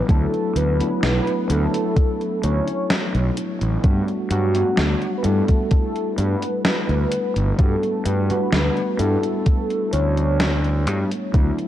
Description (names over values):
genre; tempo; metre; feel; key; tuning
vaporwave; 64 BPM; 4/4; straight; unclear; A4 = 440 Hz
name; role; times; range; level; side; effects
warm velvety synth lead; melody; 0.0-10.9 s; F#4 to C#5; -25 LUFS; equal; chorus, tremolo, tape echo
bell-like tine electric piano; accompaniment; 0.0-11.7 s; F#3 to F#4; -25 LUFS; equal; medium stereo tremolo, analog chorus, tape echo
fuzz fingered electric bass; bass; 0.1-11.5 s; G1 to G2; -21 LUFS; equal; overdrive
electronic kick drum; drums; 0.1-11.5 s; none; -17 LUFS; equal; none
gated 80s digital drum machine; drums; 0.1-11.7 s; hi-hat, snare drum; -24 LUFS; equal; gated reverb, gated reverb snare
room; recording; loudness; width
light reverb; dark, warm production, cassette tape; -18 LUFS; side -12 dB against mid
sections
0.0-11.7 A section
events
none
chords
0.0 D69; 3.8 Gmaj9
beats
| 0.09 1.03 1.96 2.90 | 3.84 4.78 5.71 6.65 | 7.59 8.53 9.46 10.40 | 11.34